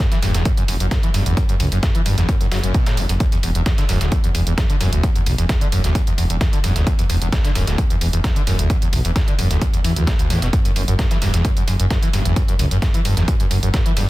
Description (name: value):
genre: driving peak-time techno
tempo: 131 BPM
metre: 4/4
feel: straight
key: unclear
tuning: A4 = 440 Hz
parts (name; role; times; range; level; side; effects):
- screaming distorted acid line; riff; 0.0-14.1 s; D2 to F#3; -21 LUFS; equal; distortion, wide subtle chorus, sidechain pumping, tape echo
- dusty soul sampler-style drum kit; drums; 0.0-14.1 s; hi-hat, snare drum; -30 LUFS; equal; sidechain pumping on hats, high-pass filter on hats, high-pass filter on snare, high-pass filter on room
- electronic hi-hat; drums; 0.0-14.1 s; none; -28 LUFS; right 3 dB; none
- electronic kick drum; drums; 0.0-13.8 s; none; -18 LUFS; equal; none
- growling FM bass; bass; 0.2-14.1 s; D1 to E2; -20 LUFS; equal; sidechain pumping
room: light reverb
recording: dense, heavily limited modern master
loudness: -16 LUFS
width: side -18 dB against mid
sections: 0.0-14.1 A section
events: none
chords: 0.0 N.C.; 3.2 E5; 10.5 N.C.